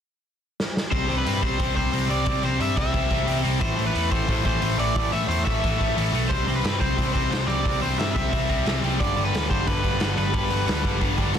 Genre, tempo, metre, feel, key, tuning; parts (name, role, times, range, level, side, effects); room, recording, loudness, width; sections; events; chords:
punk rock; 178 BPM; 4/4; straight; C major; A4 = 440 Hz
raw garage drum kit; drums; 0.6-11.4 s; hi-hat, kick drum, snare drum; -27 LUFS; equal
crunchy overdriven guitar; melody; 0.9-11.3 s; B4 to E5; -28 LUFS; equal; ping-pong delay
distorted electric guitar; riff; 0.9-11.4 s; G2 to C4; -28 LUFS; left 14 dB; overdrive
distorted electric guitar; riff; 0.9-11.4 s; G2 to C4; -29 LUFS; right 17 dB; overdrive
overdriven picked electric bass; bass; 0.9-11.4 s; G1 to G2; -27 LUFS; equal
little or no reverb; dense, heavily limited modern master; -21 LUFS; side -8 dB against mid
0.9-11.4 A section
drum fill 0.6-0.9
0.0 N.C.; 0.9 C; 3.6 Am; 6.3 C; 9.0 G